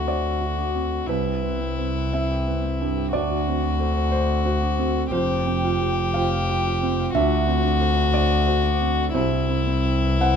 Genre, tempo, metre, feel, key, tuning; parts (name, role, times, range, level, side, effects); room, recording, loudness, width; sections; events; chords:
neoclassical piano and strings; 60 BPM (dotted quarters); 6/8; rubato; A4 = 441 Hz
warm violin; melody; 0.0-10.4 s; E4 to G4; -25 LUFS; left 5 dB
felt-muted upright piano; accompaniment; 0.0-10.4 s; C2 to F#5; -25 LUFS; right 3 dB
Celtic harp; arpeggios; 0.0-10.4 s; C4 to B5; -31 LUFS; right 2 dB
warm double bass; bass; 0.0-10.4 s; F1 to D2; -24 LUFS; equal
moderate studio reverb, RT60 0.7 s; minimal, uncompressed stereo recording; -20 LUFS; side -7 dB against mid
0.0-10.4 A section
0.0 D7; 1.1 Cmaj7; 3.1 D7; 5.1 Fsus2; 7.2 D7; 9.1 Cmaj7